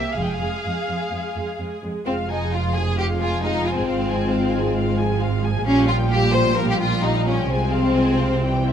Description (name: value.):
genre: quick classical-period movement for symphony orchestra.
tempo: 131 BPM.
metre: 4/4.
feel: straight.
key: F minor.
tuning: A4 = 440 Hz.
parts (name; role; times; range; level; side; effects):
warm studio violin section; melody; 0.0-8.7 s; E5 to Ab5; -30 LUFS; left 3 dB; none.
clear studio violin section; second line; 0.0-8.7 s; C4 to C5; -23 LUFS; left 2 dB; none.
rich studio viola section; accompaniment; 0.0-8.7 s; E3 to Ab4; -29 LUFS; right 3 dB; none.
rich studio double bass section; bass; 0.2-8.7 s; F1 to C2; -25 LUFS; right 3 dB; none.
warm studio cello section; bass; 0.2-8.7 s; F2 to C3; -26 LUFS; right 3 dB; none.
mellow French horn section; sustained chords; 2.1-8.7 s; G3 to F4; -27 LUFS; left 6 dB; none.
room: light reverb.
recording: close, detailed microphones.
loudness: -19 LUFS.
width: side -8 dB against mid.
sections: 0.0-2.1 A section; 2.1-8.7 A section.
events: none.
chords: 0.2 Fm; 3.9 Fm/Ab; 5.7 Bbm6; 7.5 Fm/C.